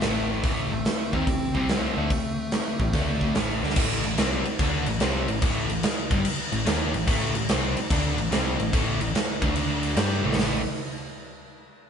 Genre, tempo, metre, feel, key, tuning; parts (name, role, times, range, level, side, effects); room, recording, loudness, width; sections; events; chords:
blues rock power trio and southern rock; 145 BPM; 4/4; swing 66% on 8ths; A minor; A4 = 440 Hz
fuzz lead guitar; melody; 0.0-3.3 s; A3 to C4; -29 LUFS; left 1 dB; distortion
biting lead guitar; second line; 0.0-3.3 s; C4 to G4; -38 LUFS; right 2 dB; overdrive
overdriven electric guitar; riff; 0.0-10.6 s; G2 to G4; -28 LUFS; left 1 dB
hollow-body short-scale picked electric bass; bass; 0.0-10.6 s; G1 to G2; -30 LUFS; equal
big rock drum kit; drums; 0.0-10.5 s; crash cymbal, hi-hat, kick drum, snare drum, toms; -25 LUFS; equal
light reverb; band playing live in one room, nothing above 10.8 kHz; -22 LUFS; side -7 dB against mid
0.0-3.8 A section; 3.8-10.4 B section; 10.4-11.9 C section
drum fill 3.6, 10.2
0.0 Am; 1.5 C5; 1.9 Am; 2.9 D5; 3.4 A5; 3.8 Am; 9.4 D5; 10.0 A5